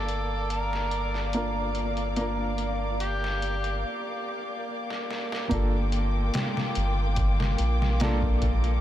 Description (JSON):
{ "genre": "trip hop", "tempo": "72 BPM", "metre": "4/4", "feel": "straight", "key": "G minor", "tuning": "A4 = 441 Hz", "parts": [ { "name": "mellow harmonica", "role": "melody", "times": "0.0-3.8 s", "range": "G4 to Bb4", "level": "-35 LUFS", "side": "right 1 dB", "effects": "vintage 12-bit sampler grit, tape echo" }, { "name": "warm upright piano", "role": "accompaniment", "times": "0.0-8.8 s", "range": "Bb3 to D5", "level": "-33 LUFS", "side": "right 1 dB", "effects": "tremolo, vintage 12-bit sampler grit, tape echo" }, { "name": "muted studio violin section", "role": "sustained chords", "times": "0.0-8.8 s", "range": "Bb3 to D6", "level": "-33 LUFS", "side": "left 1 dB", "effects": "none" }, { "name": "round analog bass", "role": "bass", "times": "0.0-8.8 s", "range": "G1 to Bb1", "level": "-27 LUFS", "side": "equal", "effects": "none" }, { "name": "trip hop sampler-style drum kit", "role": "drums", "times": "0.1-8.8 s", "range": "hi-hat, kick drum, snare drum", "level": "-32 LUFS", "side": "equal", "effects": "high-pass filter on hats, high-pass filter on snare, high-pass filter on kick, high-pass filter on room" } ], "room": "moderate huge ambient reverb, RT60 8.9 s", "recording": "dreamy mix soaked in reverb", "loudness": "-25 LUFS", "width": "side -12 dB against mid", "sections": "0.0-5.5 A section; 5.5-8.8 B section", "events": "break 3.8-5.5; drum fill 4.9-5.5", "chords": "0.0 Bb/G; 5.5 Gm7" }